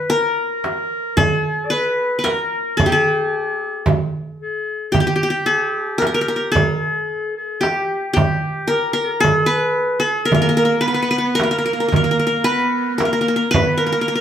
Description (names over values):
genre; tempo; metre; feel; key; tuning
Arabic maqam ensemble; 112 BPM (eighths); 10/8; straight; unclear; A4 = 440 Hz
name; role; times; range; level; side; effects
qanun; melody; 0.0-14.2 s; G4 to B4; -18 LUFS; left 1 dB; none
warm clarinet; second line; 0.0-14.2 s; G4 to D5; -24 LUFS; left 1 dB; none
darbuka; percussion; 0.6-13.8 s; none; -22 LUFS; right 3 dB; none
frame drum; percussion; 0.6-13.8 s; none; -23 LUFS; right 2 dB; none
dark studio cello section; second line; 10.3-14.2 s; Bb3 to B3; -22 LUFS; equal; none
room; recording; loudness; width
wet studio reverb, RT60 0.8 s; band playing live in one room; -16 LUFS; side -9 dB against mid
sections
0.0-14.2 A section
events
none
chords
none